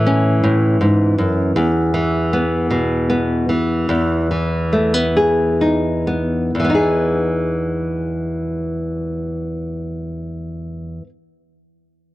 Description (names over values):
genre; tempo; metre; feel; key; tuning
folk, solo fingerstyle acoustic guitar; 41-53 BPM (dotted quarters); 6/8; straight; E major; A4 = 439 Hz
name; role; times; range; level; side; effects
nylon-string guitar; solo; 0.0-11.1 s; E2 to G#4; -16 LUFS; equal; none
room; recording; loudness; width
studio ambience; dry, close 1970s-style studio recording; -16 LUFS; side -16 dB against mid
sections
0.0-3.9 A section; 3.9-6.6 B section; 6.6-9.5 C section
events
slowing down 1.6-6.6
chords
0.0 A; 1.6 E5; 3.9 Emaj7